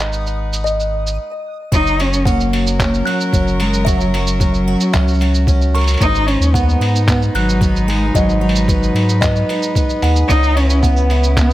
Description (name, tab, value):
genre	folktronica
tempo	112 BPM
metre	4/4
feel	straight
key	F# mixolydian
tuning	A4 = 438 Hz
part	warm string quartet	sustained chords	0.0-11.5 s	C#3 to F#5	-26 LUFS	right 1 dB	none
part	warm sub bass	bass	0.0-11.5 s	F#1 to G#2	-16 LUFS	equal	none
part	backwards swelling texture	texture	0.1-1.2 s	D#6	-38 LUFS	left 4 dB	built-in reverb
part	lo-fi sampler-style drum kit	drums	0.1-11.5 s	cabasa, handclaps, hi-hat	-24 LUFS	right 2 dB	overdrive
part	music box	second line	0.6-11.1 s	D#5 to F#6	-25 LUFS	right 1 dB	ping-pong delay
part	dark cello	melody	1.7-11.5 s	F#3 to D#4	-19 LUFS	equal	ping-pong delay
part	picked twelve-string acoustic guitar	arpeggios	1.7-11.5 s	G#2 to A#4	-23 LUFS	right 1 dB	ping-pong delay
part	electronic kick drum	drums	1.7-11.5 s	none	-17 LUFS	equal	overdrive
room	studio reverb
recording	none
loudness	-13 LUFS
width	side -15 dB against mid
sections	0.0-1.7 A section; 1.7-11.5 B section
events	filter sweep on string quartet 0.0-1.7; stop 1.2-1.7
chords	0.0 G#m7; 1.7 F#; 6.0 G#m7; 10.3 C#m7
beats	0.11 0.65 1.19 | 1.72 2.26 2.79 3.33 | 3.86 4.40 4.93 5.47 | 6.01 6.54 7.08 7.61 | 8.15 8.69 9.22 9.76 | 10.29 10.83 11.36